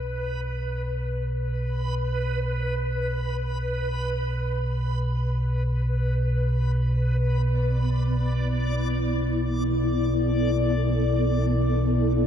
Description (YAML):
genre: dark ambient drone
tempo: free time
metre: none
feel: none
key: B minor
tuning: A4 = 440 Hz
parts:
  - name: deep rumbling drone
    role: drone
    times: 0.0-12.3 s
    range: B1 to B2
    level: -24 LUFS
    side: equal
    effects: built-in reverb, phaser, lush chorus
  - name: backwards swelling texture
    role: texture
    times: 0.0-12.3 s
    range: B4 to D5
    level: -32 LUFS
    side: left 2 dB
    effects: built-in reverb
  - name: granular cloud pad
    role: sustained chords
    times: 7.6-12.3 s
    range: B3 to D5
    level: -26 LUFS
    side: equal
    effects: built-in reverb
room: wet cathedral reverb, RT60 5.4 s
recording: dark, warm production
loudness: -23 LUFS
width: side -9 dB against mid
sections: 0.0-12.3 A section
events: filter sweep on synth drone 0.0-12.3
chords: 0.0 Bm